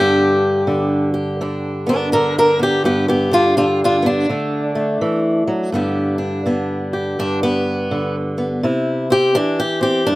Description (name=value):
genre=acoustic country blues, solo or duo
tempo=83 BPM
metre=4/4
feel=swing 63% on 8ths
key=G major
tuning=A4 = 438 Hz
part: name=fingerpicked swing-style acoustic guitar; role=solo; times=0.0-10.2 s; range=G2 to Bb4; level=-15 LUFS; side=equal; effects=none
room=little or no reverb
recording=recorded outdoors, with no room sound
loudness=-15 LUFS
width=side -18 dB against mid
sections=0.0-5.7 A section; 5.7-10.2 B section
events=steel-string acoustic guitar solo 5.7-10.2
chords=0.0 G; 4.3 D; 5.7 G; 8.6 C